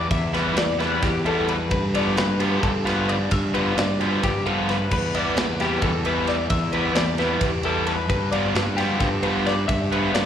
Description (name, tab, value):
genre	math rock and midwest emo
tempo	263 BPM (eighths)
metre	7/8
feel	straight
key	unclear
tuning	A4 = 440 Hz
part	twelve-string electric guitar	arpeggios	0.0-10.3 s	G4 to E5	-26 LUFS	left 4 dB	lush chorus, tape echo, slapback echo
part	fuzz fingered electric bass	bass	0.0-10.3 s	E2 to G2	-25 LUFS	equal	overdrive
part	modern studio drum kit	drums	0.1-10.3 s	crash cymbal, kick drum, ride cymbal, snare drum	-27 LUFS	right 1 dB	none
part	biting overdriven guitar	riff	0.3-10.2 s	D3 to F4	-25 LUFS	equal	slapback echo
room	light reverb, small room ambience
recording	live gig heard through the venue's PA, recital hall reverb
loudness	-20 LUFS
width	side -9 dB against mid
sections	0.0-10.3 A section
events	none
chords	0.0 Em7; 1.7 G7; 4.9 Em7; 8.1 G7